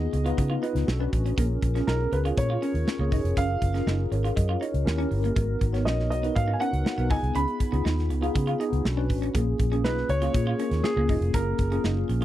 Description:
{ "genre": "polished 1980s jazz-funk pop", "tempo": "120 BPM", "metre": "4/4", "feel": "straight", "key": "unclear", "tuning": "A4 = 440 Hz", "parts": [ { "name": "mellow tine electric piano", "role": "accompaniment", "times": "0.0-12.2 s", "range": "A#3 to D#5", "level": "-29 LUFS", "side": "left 2 dB", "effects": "medium stereo tremolo, analog chorus" }, { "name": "vintage muted fingered electric bass", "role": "bass", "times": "0.0-12.2 s", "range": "E1 to C#3", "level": "-26 LUFS", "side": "equal", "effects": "none" }, { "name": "clean electric guitar", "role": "riff", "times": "0.1-12.2 s", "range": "G#3 to E#4", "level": "-34 LUFS", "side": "right 4 dB", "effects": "lush chorus" }, { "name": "modern studio drum kit", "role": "drums", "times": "0.1-12.2 s", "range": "hi-hat, kick drum, snare drum", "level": "-28 LUFS", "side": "equal", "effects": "none" }, { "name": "warm grand piano", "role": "melody", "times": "1.9-11.8 s", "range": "G#4 to B5", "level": "-31 LUFS", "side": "right 1 dB", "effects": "tape echo" } ], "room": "light reverb", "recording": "dry, close 1970s-style studio recording", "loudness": "-23 LUFS", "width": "side -13 dB against mid", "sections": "0.0-12.2 A section", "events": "none", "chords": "0.0 C#9; 0.9 Bm7; 1.4 A#m7; 3.4 F#maj7; 4.9 D#7b9; 5.4 G#m9; 7.1 C#9; 8.8 Bm7; 9.3 A#m7; 11.3 F#maj7", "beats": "0.38 0.88 | 1.38 1.88 2.37 2.87 | 3.37 3.87 4.37 4.86 | 5.36 5.86 6.36 6.86 | 7.36 7.85 8.35 8.85 | 9.35 9.85 10.34 10.84 | 11.34 11.84" }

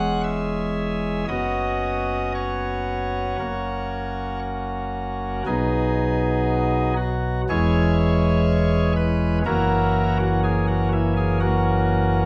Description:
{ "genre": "classical, chorale-style piece for pipe organ", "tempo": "56-62 BPM", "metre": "4/4", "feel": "rubato", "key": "unclear", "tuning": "A4 = 440 Hz", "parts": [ { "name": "pipe organ, cornet", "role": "solo", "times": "0.0-12.3 s", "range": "E1 to F#5", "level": "-22 LUFS", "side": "equal", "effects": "none" } ], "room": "wet stone room reverb, RT60 1.0 s", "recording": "none", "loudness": "-22 LUFS", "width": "mono", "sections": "0.0-5.5 A section; 5.5-12.3 A section", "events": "none", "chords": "0.0 C#m/E; 1.3 F#sus4; 3.4 F#; 5.5 B; 7.5 C#m/E; 9.5 F#7", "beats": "0.24 | 1.29 2.35 3.40 4.43 | 5.47 6.46 7.49 8.47 | 9.46 10.44 11.41" }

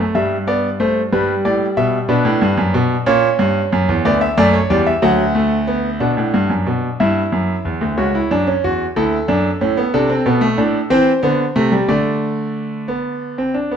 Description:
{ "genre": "classical, baroque-style 3-part fugue for grand piano", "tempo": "61 BPM (dotted quarters)", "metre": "6/8", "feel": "straight", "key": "unclear", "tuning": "A4 = 440 Hz", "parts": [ { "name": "clear concert grand piano", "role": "solo", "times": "0.0-13.8 s", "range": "C#2 to F#5", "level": "-14 LUFS", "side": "equal", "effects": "none" } ], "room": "wet stone room reverb, RT60 1.2 s", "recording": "heard from further back in the room", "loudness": "-14 LUFS", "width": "side -8 dB against mid", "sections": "0.0-6.0 A section; 6.0-13.8 B section", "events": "none", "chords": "0.2 Em/G; 2.1 Bm; 3.1 F#7; 4.0 Bm/D; 6.0 Bm; 7.0 Em; 8.0 C#madd11; 9.0 D; 9.9 Am; 11.9 D5", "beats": "| 0.16 1.13 | 2.10 3.07 | 4.05 5.03 | 6.01 7.01 | 8.00 8.97 | 9.94 10.91 | 11.89 12.89" }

